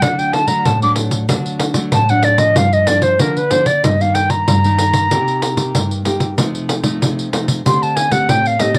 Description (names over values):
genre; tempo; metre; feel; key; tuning
samba and choro; 94 BPM; 4/4; straight; unclear; A4 = 438 Hz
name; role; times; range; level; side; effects
reedy silver concert flute; melody; 0.0-8.8 s; Bb4 to D6; -17 LUFS; equal; cassette tape
nylon-string guitar; accompaniment; 0.0-8.8 s; G2 to G4; -20 LUFS; equal; cassette tape
pandeiro; percussion; 0.0-8.8 s; none; -21 LUFS; equal; none
room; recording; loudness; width
moderate booth ambience, RT60 0.2 s; home recording on cassette; -15 LUFS; mono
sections
0.0-8.8 A section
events
flute solo 0.0-8.8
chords
0.0 D; 2.6 Gm7; 3.8 Eb/G; 5.1 Cm7; 6.4 F7/C; 7.7 D7sus4